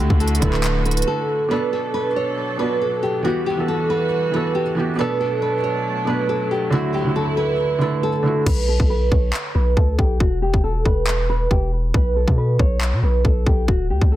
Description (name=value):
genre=hip hop, trap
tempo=138 BPM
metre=4/4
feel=half-time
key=B minor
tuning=A4 = 435 Hz
part: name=nylon-string guitar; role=melody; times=0.0-14.2 s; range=F#4 to C#5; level=-22 LUFS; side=right 1 dB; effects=low-pass filter, digital delay
part: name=felt-muted upright piano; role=accompaniment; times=0.0-8.5 s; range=B2 to B4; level=-23 LUFS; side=right 2 dB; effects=low-pass filter
part: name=dark studio string section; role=sustained chords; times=0.0-8.4 s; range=D2 to A4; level=-27 LUFS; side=left 1 dB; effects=none
part: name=long sustained 808-style bass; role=bass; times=0.0-1.0, 8.5-14.2 s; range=D1 to B2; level=-20 LUFS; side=equal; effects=none
part: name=trap drum kit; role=drums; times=0.1-1.1, 8.5-14.1 s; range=crash cymbal, handclaps, hi-hat, kick drum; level=-20 LUFS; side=equal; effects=none
room=little or no reverb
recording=dense, heavily limited modern master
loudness=-17 LUFS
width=side -14 dB against mid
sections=0.0-1.5 A section; 1.5-8.5 B section; 8.5-14.2 C section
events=break 1.1-1.5; hi-hats muted 8.5-14.2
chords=0.0 Dadd9; 1.5 Bm7; 3.2 Emadd9; 5.0 Bm7; 6.7 Dadd9; 8.5 Bm; 10.2 E5; 11.9 Aadd9/B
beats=0.20 0.64 1.07 | 1.51 1.94 2.38 2.81 | 3.25 3.68 4.12 4.55 | 4.99 5.42 5.86 6.29 | 6.72 7.16 7.59 8.03 | 8.46 8.90 9.33 9.77 | 10.20 10.64 11.07 11.51 | 11.94 12.38 12.81 13.25 | 13.68 14.12